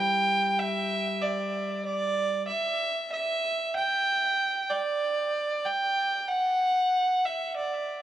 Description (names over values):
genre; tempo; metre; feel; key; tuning
folk; 95 BPM; 4/4; straight; unclear; A4 = 440 Hz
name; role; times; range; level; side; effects
rich fiddle; melody; 0.0-8.0 s; D5 to G5; -25 LUFS; right 1 dB; tape echo
fingerpicked acoustic archtop guitar; accompaniment; 0.0-2.5 s; G3; -33 LUFS; left 4 dB; none
room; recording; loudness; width
light reverb; worn, warbling old tape, cassette tape, warbly pitch drift; -25 LUFS; side -12 dB against mid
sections
0.0-8.0 A section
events
none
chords
none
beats
0.58 1.22 1.86 | 2.50 3.13 3.77 4.40 | 5.03 5.67 6.30 6.93 | 7.56